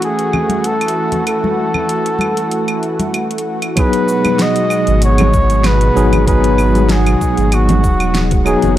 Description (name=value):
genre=sunset chillout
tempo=96 BPM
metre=4/4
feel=swing 53% on 16ths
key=unclear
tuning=A4 = 439 Hz
part: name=warm flugelhorn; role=melody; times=0.0-8.8 s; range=F#4 to D#5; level=-18 LUFS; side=equal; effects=tape echo
part: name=tine electric piano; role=accompaniment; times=0.0-8.8 s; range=E3 to G#4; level=-18 LUFS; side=moving between left 3 dB and right 3 dB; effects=medium stereo tremolo, auto-pan
part: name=lush unison pad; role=sustained chords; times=0.0-8.8 s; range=B2 to F#4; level=-20 LUFS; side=equal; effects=chorus
part: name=smooth R&B drum kit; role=drums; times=0.0-8.7 s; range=claves, hi-hat, shaker, snare drum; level=-22 LUFS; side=right 1 dB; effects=studio ambience
part: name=congas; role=percussion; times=0.3-8.8 s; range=none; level=-21 LUFS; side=equal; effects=none
part: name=electronic kick drum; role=drums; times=3.8-8.4 s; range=none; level=-16 LUFS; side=equal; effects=studio ambience
part: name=warm sub bass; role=bass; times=4.9-8.8 s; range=D#1 to G#1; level=-14 LUFS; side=equal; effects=none
room=little or no reverb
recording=dry, gritty hardware recording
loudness=-12 LUFS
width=side -12 dB against mid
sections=0.0-3.8 A section; 3.8-8.8 B section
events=none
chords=0.0 F#m7; 3.8 G#m7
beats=0.03 0.65 | 1.28 1.90 2.53 3.15 | 3.78 4.40 5.03 5.65 | 6.28 6.90 7.53 8.15 | 8.78